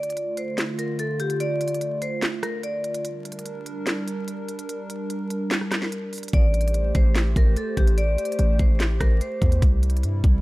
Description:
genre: hip hop, trap.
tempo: 146 BPM.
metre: 4/4.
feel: half-time.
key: D minor.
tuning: A4 = 440 Hz.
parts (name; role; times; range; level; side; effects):
vibraphone with medium hard mallets; melody; 0.0-3.0, 6.3-9.6 s; G4 to D5; -28 LUFS; left 1 dB; tape echo.
hollow soft pad; sustained chords; 0.0-10.4 s; C3 to C5; -30 LUFS; right 1 dB; chorus.
trap drum kit; drums; 0.0-10.3 s; handclaps, hi-hat, kick drum, rim click, snare drum; -22 LUFS; equal; none.
hard-hitting 808-style bass; bass; 6.3-10.4 s; A1 to G2; -21 LUFS; equal; none.
room: little or no reverb.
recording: vinyl crackle.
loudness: -21 LUFS.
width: side -19 dB against mid.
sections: 0.0-10.4 A section.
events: break 0.0-6.3.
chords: 0.0 Dm; 3.0 Gm; 6.3 Am7; 9.6 C.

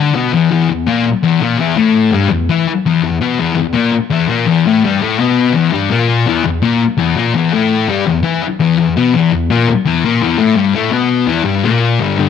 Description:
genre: rock.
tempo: 167 BPM.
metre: 4/4.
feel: straight.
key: E minor.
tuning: A4 = 441 Hz.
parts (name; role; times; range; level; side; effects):
thick fuzz guitar; solo; 0.0-12.3 s; E2 to E4; -11 LUFS; left 6 dB; distortion.
room: moderate echo chamber reverb, RT60 1.7 s, digital ambience.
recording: none.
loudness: -11 LUFS.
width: side -7 dB against mid.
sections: 0.5-12.0 A section.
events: none.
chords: 0.0 E5; 0.5 Em.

